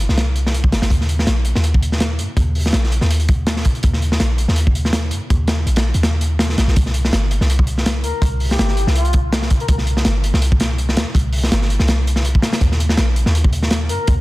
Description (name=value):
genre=drum and bass, jungle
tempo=164 BPM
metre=4/4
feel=swing 54% on 16ths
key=C minor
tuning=A4 = 440 Hz
part: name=warm 808-style bass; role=bass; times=0.0-14.2 s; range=G1 to G2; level=-17 LUFS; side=equal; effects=none
part: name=crunchy breakbeat drum kit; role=drums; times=0.1-14.2 s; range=hi-hat, kick drum, snare drum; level=-17 LUFS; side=equal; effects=none
part: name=trumpet with bucket mute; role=melody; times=8.0-9.8, 13.9-14.1 s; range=F4 to Bb4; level=-26 LUFS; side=left 3 dB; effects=dub echo
room=studio ambience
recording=dense, heavily limited modern master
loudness=-14 LUFS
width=side -19 dB against mid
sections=0.0-14.2 A section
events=none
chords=0.0 C5; 0.9 Eb5; 6.8 C5; 12.6 Eb5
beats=0.18 0.54 | 0.91 1.27 1.64 2.00 | 2.37 2.74 3.10 3.47 | 3.83 4.20 4.57 4.93 | 5.30 5.66 6.03 6.39 | 6.76 7.13 7.49 7.86 | 8.22 8.59 8.96 9.32 | 9.69 10.05 10.42 10.79 | 11.15 11.52 11.88 12.25 | 12.62 12.98 13.35 13.71 | 14.08